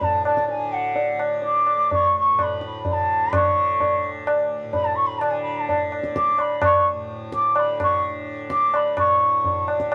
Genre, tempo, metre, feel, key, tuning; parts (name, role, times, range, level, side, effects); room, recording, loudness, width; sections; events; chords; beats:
indian classical, Hindustani; 127 BPM; 3/4; straight; D raga yaman; A4 = 442 Hz
mellow hollow bansuri; melody; 0.0-9.9 s; F#5 to D6; -23 LUFS; equal
tanpura; drone; 0.0-9.9 s; D2 to D3; -35 LUFS; equal
tabla; percussion; 0.0-9.9 s; -26 LUFS; equal
wet studio reverb, RT60 0.9 s; -21 LUFS; mono
0.0-9.0 A section
0.01 | 0.48 0.96 1.43 | 1.91 2.38 2.85 | 3.32 3.80 4.27 | 4.74 5.21 5.68 | 6.15 6.62 7.09 | 7.56 8.03 8.50 | 8.97 9.44 9.91